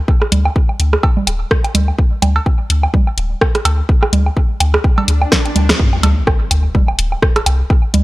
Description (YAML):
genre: minimal techno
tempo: 126 BPM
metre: 4/4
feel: swing 57% on 16ths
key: unclear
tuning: A4 = 440 Hz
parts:
  - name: electronic kick drum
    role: drums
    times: 0.1-7.8 s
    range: none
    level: -13 LUFS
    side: equal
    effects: none
  - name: electronic woodblock, rim click, congas and cowbell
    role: percussion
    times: 0.1-8.0 s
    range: none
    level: -19 LUFS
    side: right 3 dB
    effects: tape echo
  - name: punchy sub bass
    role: bass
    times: 0.3-8.0 s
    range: D1 to D2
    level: -14 LUFS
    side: equal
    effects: sidechain pumping
  - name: house drum kit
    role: drums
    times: 0.3-8.0 s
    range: hi-hat, rim click, snare drum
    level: -17 LUFS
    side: left 1 dB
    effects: none
  - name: swell and sub drop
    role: sound effects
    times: 5.1-7.7 s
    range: none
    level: -24 LUFS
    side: left 1 dB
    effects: none
room: digital ambience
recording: none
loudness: -12 LUFS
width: side -18 dB against mid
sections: 0.0-5.8 A section; 5.8-8.0 B section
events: swell 5.1-5.8; drum fill 5.3-5.8; band accent 5.7; drop 5.8-8.0; impact 5.8-7.7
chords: none